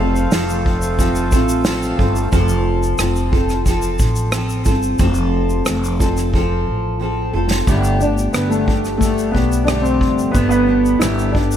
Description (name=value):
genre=acoustic pop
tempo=90 BPM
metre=4/4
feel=straight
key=unclear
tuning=A4 = 438 Hz
part: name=dark upright piano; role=melody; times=0.0-1.6, 8.0-11.6 s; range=A3 to F5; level=-19 LUFS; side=equal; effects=lush chorus
part: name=fingerpicked steel-string acoustic guitar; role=accompaniment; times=0.0-11.6 s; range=G2 to A4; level=-20 LUFS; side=equal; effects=double-tracked left and right
part: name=hand-pumped harmonium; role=sustained chords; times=0.0-2.3 s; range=A3 to F4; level=-26 LUFS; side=equal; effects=none
part: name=upright bass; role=bass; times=0.0-11.6 s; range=F1 to B1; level=-20 LUFS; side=equal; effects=none
part: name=unplugged drum kit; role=drums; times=0.2-11.6 s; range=kick drum, rim click, shaker, snare drum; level=-20 LUFS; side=equal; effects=none
room=light reverb, small room reverb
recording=bright 1980s-style digital production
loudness=-14 LUFS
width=side -10 dB against mid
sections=0.0-2.3 A section; 2.3-7.7 B section; 7.7-11.6 C section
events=drum fill 6.3-7.7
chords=0.0 F; 7.7 Gadd9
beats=0.32 0.99 1.66 | 2.33 2.99 3.66 4.33 | 5.00 5.67 6.34 7.00 | 7.67 8.34 9.01 9.68 | 10.35 11.02